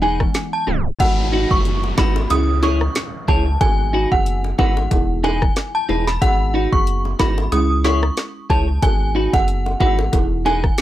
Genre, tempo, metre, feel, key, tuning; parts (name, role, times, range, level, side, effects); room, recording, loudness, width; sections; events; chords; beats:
dancehall; 92 BPM; 4/4; swing 56% on 16ths; G# minor; A4 = 441 Hz
synth chime; melody; 0.0-10.6 s; F#5 to D#6; -22 LUFS; equal; ensemble chorus, tremolo, plate reverb, analog delay
clean electric guitar; arpeggios; 0.0-10.6 s; D#4 to C#5; -22 LUFS; equal; analog chorus
round analog bass; bass; 0.0-10.7 s; E1 to C#2; -21 LUFS; equal
folk marimba with medium hard mallets; accompaniment; 0.2-10.8 s; E3 to G#4; -26 LUFS; right 2 dB
afro-pop drum kit; drums; 0.2-10.8 s; crash cymbal, hi-hat, kick drum, rim click, snare drum; -19 LUFS; equal
bongos; percussion; 1.0-10.6 s; -28 LUFS; left 2 dB
downlifter; sound effects; 1.0-6.2 s; -31 LUFS; equal
light reverb; dry, gritty hardware recording, tape stop; -16 LUFS; side -13 dB against mid
0.0-1.0 A section; 1.0-10.8 B section
tape stop 0.7-1.0
0.0 Emaj7; 1.0 G#m7; 2.3 C#m; 3.6 G#m7; 4.9 Emaj7; 6.2 G#m7; 7.5 C#m; 8.8 G#m7; 10.1 Emaj7
0.35 | 1.00 1.65 2.30 2.96 | 3.61 4.26 4.91 5.57 | 6.22 6.87 7.52 8.17 | 8.83 9.48 10.13 10.78